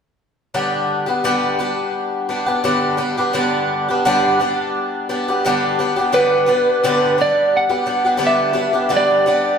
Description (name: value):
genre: rock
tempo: 86 BPM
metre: 4/4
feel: straight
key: G major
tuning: A4 = 440 Hz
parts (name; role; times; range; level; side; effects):
- picked twelve-string acoustic guitar; accompaniment; 0.5-9.6 s; G2 to G4; -17 LUFS; left 1 dB; none
- lightly driven lead guitar; melody; 6.1-9.6 s; B4 to F#5; -15 LUFS; right 1 dB; none
room: wet large studio reverb, RT60 1.4 s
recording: band playing live in one room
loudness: -15 LUFS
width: side -7 dB against mid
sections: 0.6-6.1 A section; 6.1-9.6 B section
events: none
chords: 0.6 G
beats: | 0.55 1.25 1.96 2.66 | 3.36 4.05 4.75 5.45 | 6.14 6.84 7.53 8.22 | 8.92